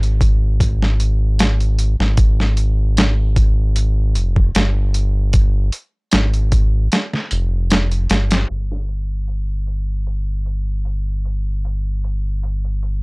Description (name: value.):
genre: trip hop.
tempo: 76 BPM.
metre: 4/4.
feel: straight.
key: unclear.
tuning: A4 = 443 Hz.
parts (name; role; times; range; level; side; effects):
round analog bass; bass; 0.0-13.0 s; F1 to Ab1; -17 LUFS; equal; none.
boom bap sampler-style drum kit; drums; 0.0-13.0 s; hi-hat, kick drum, snare drum; -17 LUFS; equal; overdrive, high-pass filter on snare, high-pass filter on hats, high-pass filter on kick.
room: little or no reverb.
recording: dry, gritty hardware recording, cassette tape, low-pass filter.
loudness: -15 LUFS.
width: side -30 dB against mid.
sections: 0.0-8.5 A section; 8.5-13.0 B section.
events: filter sweep 8.5-13.0.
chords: none.